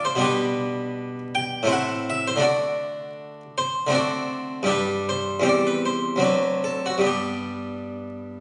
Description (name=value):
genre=classical, baroque-style suite movement for harpsichord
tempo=79 BPM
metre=3/4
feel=uneven beats, rubato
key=G major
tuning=A4 = 440 Hz
part: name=harpsichord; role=solo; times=0.0-8.4 s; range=D2 to G5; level=-24 LUFS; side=equal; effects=none
room=wet recital hall reverb, RT60 1.3 s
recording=recorded on a phone in the room, club reverb, vinyl crackle, compression, nothing above 10.6 kHz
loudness=-24 LUFS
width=mono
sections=0.0-8.4 A section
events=none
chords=0.2 G/B; 1.7 Am; 2.5 D; 4.0 D7; 4.7 G; 5.5 C/E; 6.2 D7; 7.0 G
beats=| 0.22 0.96 1.71 | 2.46 3.21 3.96 | 4.71 5.47 6.24 | 7.05 7.86